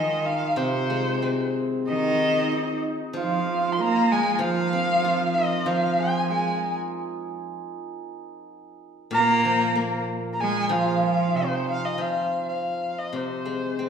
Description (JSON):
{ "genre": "chinese traditional, Chinese chamber ensemble", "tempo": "94 BPM", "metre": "2/4", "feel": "rubato", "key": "unclear", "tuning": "A4 = 439 Hz", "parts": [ { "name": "dark erhu", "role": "melody", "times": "0.0-6.7, 9.1-13.9 s", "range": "C5 to C6", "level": "-25 LUFS", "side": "left 2 dB", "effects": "none" }, { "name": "bright cello", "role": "second line", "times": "0.0-6.8, 9.1-11.8 s", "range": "C3 to Bb3", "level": "-27 LUFS", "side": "right 3 dB", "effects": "none" }, { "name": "hammered dulcimer", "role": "second line", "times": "0.0-13.9 s", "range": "C4 to Bb4", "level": "-30 LUFS", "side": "right 4 dB", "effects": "none" }, { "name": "steel-string zither", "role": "accompaniment", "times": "0.0-13.9 s", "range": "Bb2 to F4", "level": "-29 LUFS", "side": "left 2 dB", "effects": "none" } ], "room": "wet recital hall reverb, RT60 1.7 s", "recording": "recorded in a church or concert hall", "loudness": "-22 LUFS", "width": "side -7 dB against mid", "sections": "0.0-1.9 A section; 1.9-12.0 B section; 12.0-13.9 A section", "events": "none", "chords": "none" }